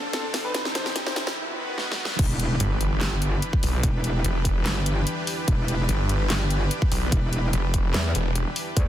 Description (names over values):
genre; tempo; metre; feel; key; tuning
heavy wobble dubstep; 146 BPM; 4/4; half-time; E phrygian; A4 = 441 Hz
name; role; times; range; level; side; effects
supersaw pad; sustained chords; 0.0-8.9 s; D3 to D5; -31 LUFS; equal; sidechain pumping
riser and impact; sound effects; 0.0-3.8 s; none; -34 LUFS; equal; none
clear baby grand piano; melody; 0.1-1.2 s; A4 to C5; -33 LUFS; left 1 dB; digital delay
dubstep drum kit; drums; 0.1-8.9 s; crash cymbal, handclaps, hi-hat, snare drum; -29 LUFS; left 1 dB; none
metallic wobble bass; bass; 2.2-8.9 s; E1 to E2; -24 LUFS; equal; chorus, overdrive
electronic kick drum; drums; 2.2-8.9 s; none; -24 LUFS; equal; none
snarling distorted saw bass; bass; 2.6-8.4 s; E1 to B1; -24 LUFS; equal; distortion, overdrive
room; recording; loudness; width
light reverb; dense, heavily limited modern master, high-pass filter; -22 LUFS; side -12 dB against mid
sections
0.0-2.2 A section; 2.2-8.9 B section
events
build-up 0.0-2.2; drum fill 0.0-1.4, 1.8-2.2; riser 0.0-1.4; drop 2.2-8.9; impact 2.2-3.8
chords
0.0 F6; 0.5 Am7; 1.4 B; 2.2 Em7